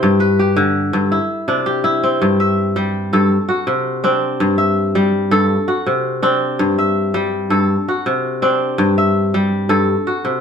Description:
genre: west african traditional.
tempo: 109 BPM (dotted quarters).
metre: 12/8.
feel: straight.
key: G major.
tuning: A4 = 439 Hz.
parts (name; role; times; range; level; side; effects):
kora; solo; 0.0-10.4 s; G2 to E5; -14 LUFS; left 1 dB; none.
room: wet studio reverb, RT60 0.8 s.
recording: band playing live in one room.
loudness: -14 LUFS.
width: side -7 dB against mid.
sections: 0.0-2.2 A section; 2.2-10.4 B section.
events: none.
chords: 0.0 G; 1.1 C; 2.2 Am7/G; 3.3 D7/C; 4.4 G5; 5.5 D7/C; 6.6 G5; 7.7 D7/C; 8.8 G5; 9.9 D7/C.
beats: | 0.02 0.57 1.11 1.66 | 2.21 2.75 3.30 3.85 | 4.40 4.95 5.50 6.04 | 6.59 7.14 7.69 8.24 | 8.79 9.34 9.88.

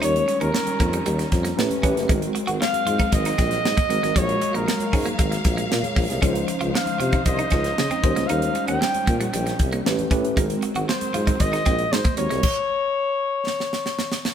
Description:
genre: polished 1980s jazz-funk pop.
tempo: 116 BPM.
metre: 4/4.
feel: straight.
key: unclear.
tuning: A4 = 440 Hz.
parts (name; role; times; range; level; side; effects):
warm flugelhorn; melody; 0.0-14.2 s; Bb4 to G5; -25 LUFS; left 1 dB; tape echo.
mellow tine electric piano; accompaniment; 0.0-12.5 s; F3 to Db5; -28 LUFS; right 1 dB; medium stereo tremolo.
dark symphonic string section; sustained chords; 0.0-12.4 s; Db3 to F5; -32 LUFS; left 1 dB; none.
electric guitar at the edge of break-up; riff; 0.0-12.4 s; Gb3 to Gb4; -30 LUFS; right 3 dB; none.
warm tuba; bass; 0.0-12.4 s; Gb1 to Db3; -26 LUFS; equal; none.
tight funk drum kit; drums; 0.0-14.3 s; crash cymbal, hi-hat, kick drum, snare drum; -24 LUFS; equal; none.
congas; percussion; 0.1-12.2 s; none; -37 LUFS; right 2 dB; none.
room: moderate stone room reverb, RT60 1.1 s.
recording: band playing live in one room.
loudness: -19 LUFS.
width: side -8 dB against mid.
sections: 0.0-14.3 A section.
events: drum fill 13.5-14.3.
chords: 0.0 Eb9; 1.6 A9; 2.1 Ab9; 4.2 Gbmaj9/Bb; 6.2 Dbmaj9; 8.0 Eb13; 9.8 A9; 10.4 Ab9; 12.4 N.C..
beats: | 0.03 0.54 1.06 1.58 | 2.10 2.61 3.13 3.65 | 4.16 4.68 5.20 5.71 | 6.23 6.75 7.26 7.78 | 8.30 8.82 9.33 9.85 | 10.37 10.88 11.40 11.91 | 12.43 12.95 13.46 13.98.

